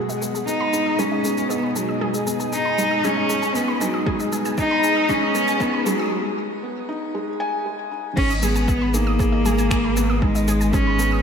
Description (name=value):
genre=piano and strings electronica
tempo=117 BPM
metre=4/4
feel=straight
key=G# minor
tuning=A4 = 440 Hz
part: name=lush unison pad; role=sustained chords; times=0.0-6.1 s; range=B2 to G#4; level=-29 LUFS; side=left 2 dB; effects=chorus, sidechain pumping, shimmer reverb
part: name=wide unison pluck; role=arpeggios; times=0.0-11.2 s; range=G#4 to D#6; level=-30 LUFS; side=right 1 dB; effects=sidechain pumping, ping-pong delay, shimmer reverb
part: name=felt-muted upright piano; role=riff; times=0.0-11.2 s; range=G#3 to G#5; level=-26 LUFS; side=equal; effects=ping-pong delay, shimmer reverb
part: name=deep house drum kit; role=drums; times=0.1-11.1 s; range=crash cymbal, finger snaps, shaker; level=-31 LUFS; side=left 3 dB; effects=overdrive
part: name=dark cello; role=melody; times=0.5-11.2 s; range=F#3 to D#4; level=-22 LUFS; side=equal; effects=ping-pong delay, shimmer reverb
part: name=electronic kick drum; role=drums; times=4.1-10.8 s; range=none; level=-24 LUFS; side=equal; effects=overdrive
part: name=warm sub bass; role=bass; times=8.2-11.2 s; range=G#1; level=-22 LUFS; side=equal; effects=sidechain pumping
room=wet plate reverb, RT60 2.3 s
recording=dreamy mix soaked in reverb, high-pass filter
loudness=-19 LUFS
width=side -7 dB against mid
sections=0.0-8.2 A section; 8.2-11.2 B section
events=build-up 0.0-8.2; filter sweep 0.0-8.2; break 6.1-8.2; drop 8.2-11.2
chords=0.0 G#m